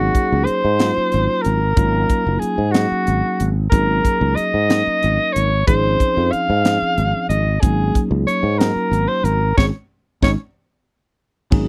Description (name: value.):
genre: electric jazz fusion.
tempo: 62 BPM (dotted quarters).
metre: 6/8.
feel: straight.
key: Ab mixolydian.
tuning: A4 = 441 Hz.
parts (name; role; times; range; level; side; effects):
warm soprano saxophone; melody; 0.0-10.3 s; Gb4 to F5; -22 LUFS; equal; slapback echo.
bell-like tine electric piano; accompaniment; 0.0-11.7 s; F3 to Bb4; -26 LUFS; equal; phaser.
sustaining fretless electric bass; bass; 0.0-11.7 s; Gb1 to Ab2; -21 LUFS; equal; none.
crisp fusion drum kit; drums; 0.1-11.7 s; crash cymbal, hi-hat, kick drum, snare drum; -20 LUFS; equal; none.
room: little or no reverb.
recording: dry, close 1970s-style studio recording.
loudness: -18 LUFS.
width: mono.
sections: 0.0-11.5 A section.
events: band accent 9.6-11.5; drum fill 10.6-11.5.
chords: 0.0 Ab9sus4; 1.8 Ebm9; 3.7 Ab9sus4; 5.7 Dbmaj9/Ab; 7.6 Ab9sus4; 9.6 Absus4.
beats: 0.79 | 1.77 2.75 | 3.72 4.70 | 5.67 6.65 | 7.63 8.60 | 9.58 10.55 | 11.53.